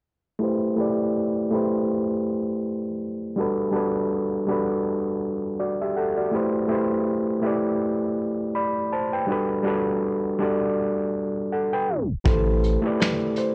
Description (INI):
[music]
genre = lo-fi hip hop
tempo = 81 BPM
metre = 4/4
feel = swing 57% on 16ths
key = A dorian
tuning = A4 = 442 Hz
[part]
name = overdriven reed electric piano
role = accompaniment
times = 0.4-13.5 s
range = G3 to B5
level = -25 LUFS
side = equal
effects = cassette tape, low-pass filter
[part]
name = buzzing kalimba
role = melody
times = 12.3-13.5 s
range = A4 to C5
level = -30 LUFS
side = equal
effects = low-pass filter
[part]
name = saturated sub bass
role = bass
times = 12.3-12.8 s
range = A1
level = -25 LUFS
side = equal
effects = none
[part]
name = vintage brush drum kit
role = drums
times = 12.3-13.5 s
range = finger snaps, hi-hat, kick drum, snare drum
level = -26 LUFS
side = equal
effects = vintage 12-bit sampler grit
[sound]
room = wet small room reverb, RT60 0.5 s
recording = worn, warbling old tape, cassette tape, warbly pitch drift, tape stop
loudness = -25 LUFS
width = mono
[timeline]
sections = 0.4-12.3 A section; 12.3-13.5 B section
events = filter sweep on reed electric piano 0.4-12.3; tape stop 11.9-12.3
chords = 0.4 Am9; 3.4 Gmaj9; 6.3 Am9; 9.3 Gmaj9; 12.3 Am9